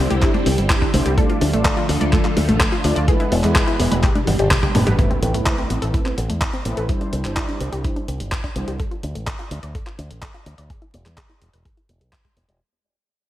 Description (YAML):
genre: italo disco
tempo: 126 BPM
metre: 4/4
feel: straight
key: A minor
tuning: A4 = 441 Hz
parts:
  - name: phased string machine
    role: sustained chords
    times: 0.0-5.0 s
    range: B2 to A4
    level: -25 LUFS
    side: equal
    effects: ensemble chorus, phaser
  - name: wide unison pluck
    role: arpeggios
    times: 0.0-12.6 s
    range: G3 to E5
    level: -27 LUFS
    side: left 2 dB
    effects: vintage 12-bit sampler grit, tape echo
  - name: mellow synth brass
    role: stabs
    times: 0.0-8.8 s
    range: G3 to D5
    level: -26 LUFS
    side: right 1 dB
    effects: chorus, tape echo
  - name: fingered electric bass with an envelope filter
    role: bass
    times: 0.0-12.6 s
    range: E1 to A2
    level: -22 LUFS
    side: equal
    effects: none
  - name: clean 12-bit digital drum machine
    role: drums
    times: 0.1-12.6 s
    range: congas, handclaps, hi-hat, toms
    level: -23 LUFS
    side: equal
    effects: gated reverb
  - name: electronic kick drum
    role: drums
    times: 0.2-12.3 s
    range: none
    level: -21 LUFS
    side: equal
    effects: none
  - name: impact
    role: sound effects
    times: 5.0-6.9 s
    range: none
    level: -30 LUFS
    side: equal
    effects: none
room: light reverb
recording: vinyl crackle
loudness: -17 LUFS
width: side -13 dB against mid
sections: 0.0-5.0 A section; 5.0-12.6 B section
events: drum fill 4.3-5.0; fade-out 5.0-12.6; impact 5.0-6.9; filter sweep on synth arpeggio sound 5.0-12.6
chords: 0.0 Cadd9; 1.2 Dm; 3.1 E; 4.0 G; 5.0 Amadd9; 6.9 Cadd9; 8.8 Dm; 10.7 E